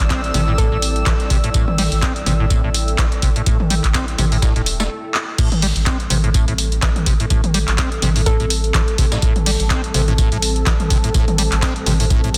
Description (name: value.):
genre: acid house.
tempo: 125 BPM.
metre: 4/4.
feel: swing 56% on 16ths.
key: A minor.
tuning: A4 = 439 Hz.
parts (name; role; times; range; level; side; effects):
dark analog pad; sustained chords; 0.0-12.4 s; G3 to D5; -31 LUFS; equal; chorus, sidechain pumping.
round analog bass; bass; 0.0-12.4 s; E1 to A1; -24 LUFS; equal; sidechain pumping.
dusty soul sampler-style drum kit; drums; 0.0-12.4 s; hi-hat, snare drum, tambourine; -31 LUFS; equal; overdrive, sidechain pumping on perc, high-pass filter on perc, studio reverb, sidechain pumping on hats, high-pass filter on hats, high-pass filter on snare.
electronic kick drum; drums; 0.0-12.2 s; none; -21 LUFS; equal; studio reverb.
punchy analog drum machine; drums; 0.0-12.4 s; crash cymbal, handclaps, hi-hat, toms; -24 LUFS; equal; studio reverb.
airy breathy pad; texture; 0.0-4.9 s; E4 to E6; -31 LUFS; equal; chorus, sidechain pumping.
acid bass, square; riff; 0.1-12.3 s; A2 to C4; -26 LUFS; equal; tube saturation, analog chorus, sidechain pumping, analog delay.
hollow square pluck; melody; 0.6-1.1, 8.3-8.7 s; A4; -31 LUFS; equal; chorus, tape echo.
room: light reverb.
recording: dense, heavily limited modern master.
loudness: -17 LUFS.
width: mono.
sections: 0.0-5.4 A section; 5.4-12.4 B section.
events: stop 4.9-5.4; drum fill 5.1; drop 5.4-12.4.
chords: 0.0 Am7.